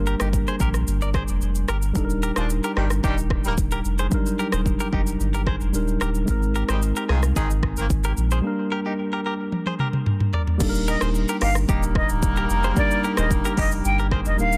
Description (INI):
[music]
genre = afrobeats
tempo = 111 BPM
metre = 4/4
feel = straight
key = Eb major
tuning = A4 = 439 Hz
[part]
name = tine electric piano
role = accompaniment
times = 0.0-14.6 s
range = Gb3 to Bb4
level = -30 LUFS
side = equal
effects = none
[part]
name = warm sub bass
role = bass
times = 0.0-14.6 s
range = D1 to C2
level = -26 LUFS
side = equal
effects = none
[part]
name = direct-recorded clean electric guitar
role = riff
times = 0.1-14.2 s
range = Eb4 to D5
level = -33 LUFS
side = equal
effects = spring reverb, tape echo
[part]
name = afro-pop drum kit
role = drums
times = 0.1-14.6 s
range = crash cymbal, hi-hat, kick drum, rim click, shaker, toms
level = -27 LUFS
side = equal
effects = soft clipping on snare
[part]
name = warm horn section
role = second line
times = 2.4-7.9, 11.7-14.6 s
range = Eb3 to Bb4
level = -32 LUFS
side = equal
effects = tape echo
[part]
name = bright silver concert flute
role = melody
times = 10.9-14.6 s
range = D5 to G5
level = -28 LUFS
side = equal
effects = none
[sound]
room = little or no reverb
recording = dense, heavily limited modern master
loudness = -23 LUFS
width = mono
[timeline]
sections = 0.0-10.6 A section; 10.6-14.6 B section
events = drum fill 9.5-10.6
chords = 0.0 Gm; 2.0 Ebmaj7; 6.3 Abadd9; 8.4 Gm; 10.6 Ebmaj7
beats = 0.33 0.87 1.42 | 1.96 2.50 3.04 3.58 | 4.12 4.66 5.20 5.74 | 6.28 6.82 7.36 7.90 | 8.44 8.98 9.52 10.06 | 10.60 11.14 11.69 12.23 | 12.77 13.31 13.85 14.39